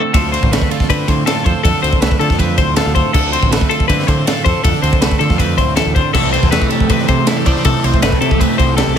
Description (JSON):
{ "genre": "math rock and midwest emo", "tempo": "160 BPM", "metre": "4/4", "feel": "straight", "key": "unclear", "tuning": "A4 = 441 Hz", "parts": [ { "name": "twelve-string electric guitar", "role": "accompaniment", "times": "0.0-9.0 s", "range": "A2 to D5", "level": "-19 LUFS", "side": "right 8 dB", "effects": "none" }, { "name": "twelve-string electric guitar", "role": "arpeggios", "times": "0.0-9.0 s", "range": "A4 to C5", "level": "-18 LUFS", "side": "left 10 dB", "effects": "none" }, { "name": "growling picked electric bass", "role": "bass", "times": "0.1-9.0 s", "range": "G1 to D3", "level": "-19 LUFS", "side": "equal", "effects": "overdrive" }, { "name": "crisp fusion drum kit", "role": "drums", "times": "0.1-8.9 s", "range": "crash cymbal, kick drum, ride cymbal, snare drum", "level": "-15 LUFS", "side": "equal", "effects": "none" }, { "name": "overdriven electric guitar", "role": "riff", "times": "6.1-9.0 s", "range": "C3 to A4", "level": "-18 LUFS", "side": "right 1 dB", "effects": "phaser" } ], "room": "light reverb", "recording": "none", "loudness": "-11 LUFS", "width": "side -8 dB against mid", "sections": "0.1-9.0 A section", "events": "none", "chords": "0.1 Dm7; 6.1 Am9/C" }